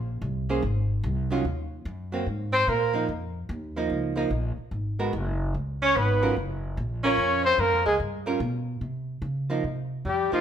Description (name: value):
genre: jazz, small-group swing and bop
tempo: 146 BPM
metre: 4/4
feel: swing 65% on 8ths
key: unclear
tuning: A4 = 439 Hz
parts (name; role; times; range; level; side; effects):
- upright bass; bass; 0.0-10.4 s; Gb1 to Db3; -29 LUFS; equal; none
- archtop guitar, miked and amplified; accompaniment; 0.5-10.4 s; Eb3 to C5; -29 LUFS; right 4 dB; none
- mellow trumpet; melody; 2.5-3.1, 5.8-10.4 s; F4 to Db5; -24 LUFS; left 1 dB; none
- breathy tenor saxophone; second line; 2.5-3.1, 5.8-10.4 s; F3 to Db4; -28 LUFS; right 2 dB; none
room: moderate large studio reverb, RT60 1.2 s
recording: band playing live in one room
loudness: -24 LUFS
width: side -9 dB against mid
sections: 0.0-9.6 A section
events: none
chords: 0.0 Bbm9; 1.4 Ebm; 2.3 Absus2; 3.1 Db69; 4.7 Abm9; 5.5 Db7; 6.4 Gbmaj7; 8.0 Gm7b5; 8.8 Dbmaj13/C; 9.6 Csus4